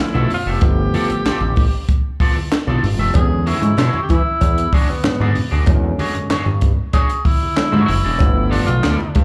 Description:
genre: funk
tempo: 95 BPM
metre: 4/4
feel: straight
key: E mixolydian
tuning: A4 = 444 Hz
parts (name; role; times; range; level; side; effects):
- breathy tenor saxophone; melody; 0.0-9.2 s; B3 to G#4; -25 LUFS; equal; slapback echo
- overdriven tine electric piano; stabs; 0.0-8.8 s; D3 to G4; -27 LUFS; equal; slapback echo
- fat analog bass; bass; 0.0-9.2 s; E1 to E3; -20 LUFS; equal; none
- electric guitar at the edge of break-up; accompaniment; 0.1-9.0 s; B3 to E5; -27 LUFS; equal; analog chorus, slapback echo
- congas; percussion; 0.2-9.2 s; none; -30 LUFS; equal; none
- compact cocktail drum kit; drums; 0.3-9.2 s; handclaps, hi-hat, kick drum, snare drum; -20 LUFS; equal; none
- cowbell; percussion; 3.1-9.0 s; none; -35 LUFS; equal; none
room: small room ambience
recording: live gig heard through the venue's PA, cassette tape, club reverb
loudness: -17 LUFS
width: mono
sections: 0.0-9.2 A section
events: tenor saxophone solo 0.0-9.2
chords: 0.0 G9; 3.1 E13; 8.2 G9

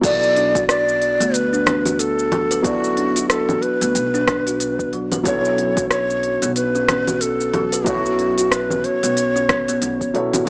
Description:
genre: organic downtempo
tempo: 92 BPM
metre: 4/4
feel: swing 58% on 16ths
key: B minor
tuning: A4 = 440 Hz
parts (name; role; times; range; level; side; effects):
- breathy hollow low Native American-style wooden flute; melody; 0.0-10.1 s; F#4 to D5; -20 LUFS; equal; analog delay
- felt-muted upright piano; accompaniment; 0.0-10.5 s; F#3 to D5; -26 LUFS; equal; sidechain pumping
- kalimba; arpeggios; 0.0-10.4 s; F#3 to B4; -22 LUFS; equal; analog delay
- upright bass; bass; 0.0-10.4 s; B1 to D2; -31 LUFS; equal; sidechain pumping
- electronic kick drum; drums; 0.0-10.1 s; none; -26 LUFS; equal; none
- organic electronic drum kit; drums; 0.0-10.5 s; cabasa, congas, crash cymbal, hi-hat, rim click; -21 LUFS; equal; none
room: light reverb, studio ambience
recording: dry, gritty hardware recording, small speaker sound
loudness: -16 LUFS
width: side -38 dB against mid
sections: 0.0-10.5 A section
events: none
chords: 0.0 Bm7; 5.3 F#7sus4/B

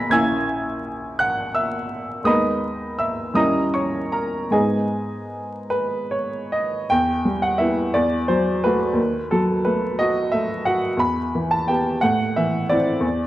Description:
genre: classical, romantic character piece for solo piano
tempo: 49-60 BPM (dotted quarters)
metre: 6/8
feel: rubato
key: G# minor, E minor from 6.9 s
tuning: A4 = 440 Hz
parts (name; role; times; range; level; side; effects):
- clear upright piano; solo; 0.0-13.3 s; A#1 to B6; -19 LUFS; equal; none
room: moderate recital hall reverb, RT60 1.7 s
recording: dark, warm production, vinyl crackle, nothing above 10.5 kHz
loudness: -19 LUFS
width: side -15 dB against mid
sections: 0.0-6.9 A section; 6.9-13.3 B section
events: none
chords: 0.1 A#m7b5; 2.3 G#m/D#; 3.4 D#7b9; 4.5 G#m; 6.9 Em; 7.9 D13/E; 9.0 D#dim; 11.0 Em; 12.0 Am

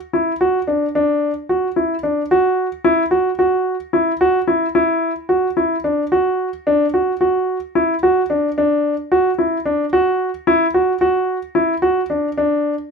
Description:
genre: contemporary instrumental, contemporary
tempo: 221 BPM (eighths)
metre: 7/8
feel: straight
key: D major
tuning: A4 = 441 Hz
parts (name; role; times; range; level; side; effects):
- warm grand piano; solo; 0.1-12.7 s; D4 to F#4; -15 LUFS; equal; none
room: moderate studio reverb, RT60 0.7 s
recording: minimal, uncompressed stereo recording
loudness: -15 LUFS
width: side -5 dB against mid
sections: 0.0-12.9 A section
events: none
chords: none

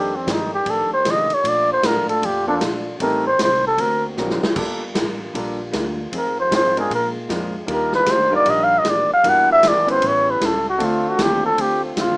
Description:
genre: jazz, big band swing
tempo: 154 BPM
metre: 4/4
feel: swing 64% on 8ths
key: Bb major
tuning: A4 = 443 Hz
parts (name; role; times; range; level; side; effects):
- trumpet with bucket mute; melody; 0.0-12.2 s; C4 to Gb5; -16 LUFS; equal; none
- clear concert grand piano; accompaniment; 0.0-0.1, 2.5-11.9 s; F#3 to Cb5; -25 LUFS; equal; none
- hollow-body jazz guitar; accompaniment; 0.0-12.2 s; F2 to A#4; -30 LUFS; left 1 dB; none
- dark trombone section; sustained chords; 0.0-12.2 s; Bb2 to G4; -31 LUFS; equal; none
- upright bass; bass; 0.0-12.2 s; G1 to C3; -32 LUFS; equal; none
- swinging big-band drum kit; drums; 0.3-12.1 s; crash cymbal, hi-hat, kick drum, ride cymbal, snare drum; -25 LUFS; equal; none
room: light reverb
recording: rough home demo mix, small speaker sound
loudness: -16 LUFS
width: side -28 dB against mid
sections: 0.0-4.6 A section; 4.6-12.2 A section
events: muted trumpet solo 0.0-12.2; drum fill 4.2-4.6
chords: 0.0 F13; 1.4 Bbmaj7; 3.0 Am7b5; 3.8 D7alt; 4.6 Gm7; 6.1 Fm7; 6.9 Bb7; 7.7 Ebmaj7; 9.2 Em7b5; 10.0 A7; 10.8 Dm7

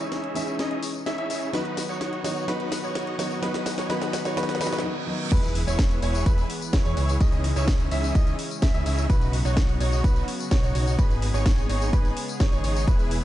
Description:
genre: EDM, festival progressive house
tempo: 127 BPM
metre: 4/4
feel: straight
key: E major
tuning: A4 = 438 Hz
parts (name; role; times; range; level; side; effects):
- felt-muted upright piano; accompaniment; 0.0-5.3 s; D#3 to D#4; -31 LUFS; left 1 dB; vintage 12-bit sampler grit, sidechain pumping, digital delay
- lush unison pad; sustained chords; 0.0-13.2 s; C#3 to D#6; -35 LUFS; equal; chorus, sidechain pumping
- bright baby grand piano; arpeggios; 0.0-13.2 s; B4 to E5; -34 LUFS; right 3 dB; sidechain pumping, low-pass filter, digital delay
- big supersaw lead; riff; 0.0-13.2 s; C#4 to E5; -32 LUFS; equal; sidechain pumping, low-pass filter, digital delay
- fat analog bass; bass; 0.0-13.2 s; E1 to E2; -27 LUFS; equal; tube saturation, sidechain pumping, high-pass filter
- house drum kit; drums; 0.0-13.2 s; crash cymbal, hi-hat, snare drum, tambourine; -32 LUFS; left 1 dB; none
- riser, reverse cymbal and impact; sound effects; 2.2-7.2 s; none; -40 LUFS; right 1 dB; none
- electronic kick drum; drums; 5.3-13.0 s; none; -21 LUFS; equal; none
room: light reverb, digital ambience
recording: dark, warm production, nothing above 10.5 kHz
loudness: -22 LUFS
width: side -14 dB against mid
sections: 0.0-5.3 A section; 5.3-13.2 B section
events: build-up 0.0-5.3; drum fill 0.0-4.8; reverse cymbal 4.6-5.3; break 4.8-5.3; drop 5.3-13.2; impact 5.3-7.2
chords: 0.0 C#madd9; 1.5 B; 3.4 G#m; 5.3 E; 7.2 C#madd9; 9.1 B; 11.0 G#m

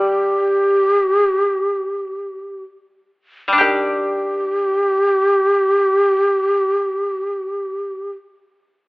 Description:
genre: japanese traditional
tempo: free time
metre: none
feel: none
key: unclear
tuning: A4 = 440 Hz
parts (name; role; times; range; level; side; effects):
- breathy long shakuhachi; melody; 0.0-8.1 s; G4; -16 LUFS; equal; none
- shamisen; second line; 0.0-8.3 s; G3; -27 LUFS; right 1 dB; none
- koto; accompaniment; 0.0-8.4 s; Eb3 to G4; -19 LUFS; left 1 dB; none
room: light reverb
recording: telephone sound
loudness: -15 LUFS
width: side -26 dB against mid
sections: 0.0-3.6 A section; 3.6-7.4 B section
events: slowing down 0.0-3.6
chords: none

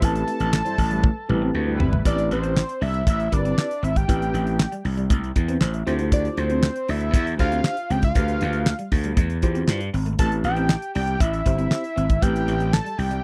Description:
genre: early-eighties boogie funk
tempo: 118 BPM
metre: 4/4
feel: straight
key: A minor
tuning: A4 = 440 Hz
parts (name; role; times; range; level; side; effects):
- fat analog lead; melody; 0.0-13.2 s; C5 to A5; -29 LUFS; equal; phaser
- mellow tine electric piano; accompaniment; 0.0-12.7 s; B3 to E5; -31 LUFS; equal; none
- semi-hollow electric guitar; riff; 0.0-13.2 s; G3 to E4; -33 LUFS; equal; subtle chorus
- gritty slap bass; bass; 0.0-13.2 s; G1 to G2; -26 LUFS; equal; overdrive
- damped 70s drum kit; drums; 0.0-13.2 s; handclaps, hi-hat, kick drum, snare drum, toms; -23 LUFS; equal; none
- mellow synth brass; second line; 0.6-2.0 s; G3 to C5; -33 LUFS; equal; chorus
room: little or no reverb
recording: dry, close 1970s-style studio recording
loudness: -22 LUFS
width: mono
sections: 0.0-2.1 A section; 2.1-13.2 B section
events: drum fill 1.0-2.1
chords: 0.0 Am9; 2.1 Am7; 5.9 Dm11; 10.2 Am7

